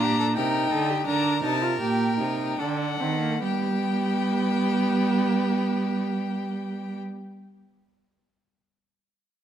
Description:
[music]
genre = classical, baroque-style fugue for string quartet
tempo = 70-88 BPM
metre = 3/4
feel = straight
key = unclear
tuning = A4 = 440 Hz
[part]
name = rich violin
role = melody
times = 0.0-7.0 s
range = F#5 to Bb5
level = -30 LUFS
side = left 9 dB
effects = none
[part]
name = rich violin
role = second line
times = 0.0-7.0 s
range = G4 to Bb4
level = -33 LUFS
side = left 2 dB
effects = none
[part]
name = warm viola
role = accompaniment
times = 0.0-7.0 s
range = Bb3 to G4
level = -27 LUFS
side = right 3 dB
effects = none
[part]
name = rich cello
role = bass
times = 0.0-7.0 s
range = Bb2 to G3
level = -27 LUFS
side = right 3 dB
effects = none
[sound]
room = moderate scoring stage reverb, RT60 1.7 s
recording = none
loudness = -23 LUFS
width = side -10 dB against mid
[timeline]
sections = 0.0-3.4 A section; 3.4-8.6 B section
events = slowing down 0.0-3.4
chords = 0.4 Am7b5/C; 1.1 Gm; 2.6 D7; 3.4 G

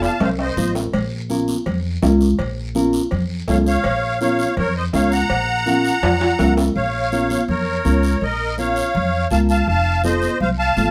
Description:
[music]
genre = latin, cumbia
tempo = 165 BPM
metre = 4/4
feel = straight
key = Bb harmonic minor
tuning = A4 = 436 Hz
[part]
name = musette accordion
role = melody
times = 0.0-0.7, 3.5-10.9 s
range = Bb4 to Bb5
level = -23 LUFS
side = equal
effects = none
[part]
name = nylon-string guitar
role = accompaniment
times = 0.0-10.9 s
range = C4 to C5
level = -24 LUFS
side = equal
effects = none
[part]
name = upright bass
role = bass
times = 0.0-10.9 s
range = F1 to F2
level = -23 LUFS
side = equal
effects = none
[part]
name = congas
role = percussion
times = 0.0-10.9 s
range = none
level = -29 LUFS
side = equal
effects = none
[part]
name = guiro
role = percussion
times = 0.0-10.9 s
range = none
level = -38 LUFS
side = equal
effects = none
[part]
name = timbales and cowbell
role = percussion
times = 0.0-6.7 s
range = none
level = -27 LUFS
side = equal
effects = none
[sound]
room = moderate studio ambience, RT60 0.5 s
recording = band playing live in one room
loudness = -19 LUFS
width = mono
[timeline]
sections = 0.0-6.8 A section; 6.8-10.9 A section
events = drum fill 0.0-0.9, 6.0-6.8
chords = 0.0 F7; 0.9 Bbm; 9.7 F7

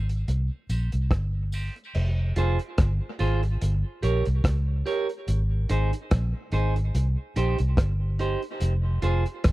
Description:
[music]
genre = dub reggae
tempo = 72 BPM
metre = 4/4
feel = swing 56% on 16ths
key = F minor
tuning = A4 = 440 Hz
[part]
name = clean electric guitar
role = accompaniment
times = 0.0-9.2 s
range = Eb4 to Db5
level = -31 LUFS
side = right 4 dB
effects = high-pass filter, tape echo
[part]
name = vintage muted fingered electric bass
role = bass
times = 0.0-9.5 s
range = F1 to Db2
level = -24 LUFS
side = equal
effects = none
[part]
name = crunchy breakbeat drum kit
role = drums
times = 0.1-9.5 s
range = crash cymbal, hi-hat, kick drum, rim click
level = -25 LUFS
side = equal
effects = none
[part]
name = tambourine and woodblock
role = percussion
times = 0.7-1.7 s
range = none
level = -51 LUFS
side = right 1 dB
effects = high-pass filter on perc, tape echo
[sound]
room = little or no reverb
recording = dry, close 1970s-style studio recording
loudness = -23 LUFS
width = side -17 dB against mid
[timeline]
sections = 0.0-1.9 A section; 1.9-9.5 B section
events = part muted 1.9-9.5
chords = 0.3 Cm; 1.9 Fm; 3.6 Gdim; 5.3 Ab; 6.9 Cm; 8.6 Fm

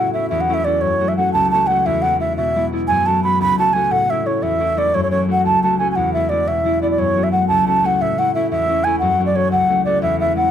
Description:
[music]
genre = celtic folk, Celtic jig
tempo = 117 BPM (dotted quarters)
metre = 6/8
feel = straight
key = unclear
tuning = A4 = 440 Hz
[part]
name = baroque flute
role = melody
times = 0.0-10.5 s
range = C#5 to B5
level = -16 LUFS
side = right 1 dB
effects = none
[part]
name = concert harp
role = accompaniment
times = 0.0-10.5 s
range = C#2 to F#4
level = -20 LUFS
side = left 2 dB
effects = none
[sound]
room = light reverb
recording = close, detailed microphones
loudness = -15 LUFS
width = side -9 dB against mid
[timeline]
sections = 0.0-7.0 A section; 7.0-10.5 A section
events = none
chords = 0.0 A; 0.8 F#m; 1.9 E; 2.9 F#m; 3.9 A; 4.9 F#m; 6.0 E; 7.0 F#m; 8.0 A; 9.0 F#m

